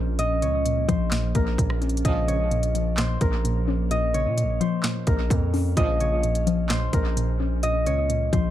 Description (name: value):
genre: hip hop, trap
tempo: 129 BPM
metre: 4/4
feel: half-time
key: Bb minor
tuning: A4 = 440 Hz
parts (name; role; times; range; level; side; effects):
- Celtic harp; melody; 0.0-8.5 s; Bb4 to Eb5; -28 LUFS; left 1 dB; low-pass filter, analog delay
- warbly dusty pluck; accompaniment; 0.0-8.5 s; Bb2 to Db4; -28 LUFS; left 2 dB; chorus, low-pass filter, analog delay
- glassy FM pad; sustained chords; 0.0-8.5 s; F3 to Db4; -33 LUFS; right 2 dB; ensemble chorus, built-in reverb
- distorted 808-style bass; bass; 0.0-8.5 s; Bb1 to Bb2; -25 LUFS; equal; distortion
- trap drum kit; drums; 0.2-8.4 s; handclaps, hi-hat, kick drum, rim click, snare drum; -26 LUFS; equal; analog delay
- mellow brass ensemble; stabs; 2.0-2.5, 5.8-6.2 s; Db2 to F3; -33 LUFS; right 5 dB; analog delay
room: little or no reverb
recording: echo-heavy mix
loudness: -21 LUFS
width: side -12 dB against mid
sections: 0.0-8.5 A section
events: none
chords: 0.0 Bbm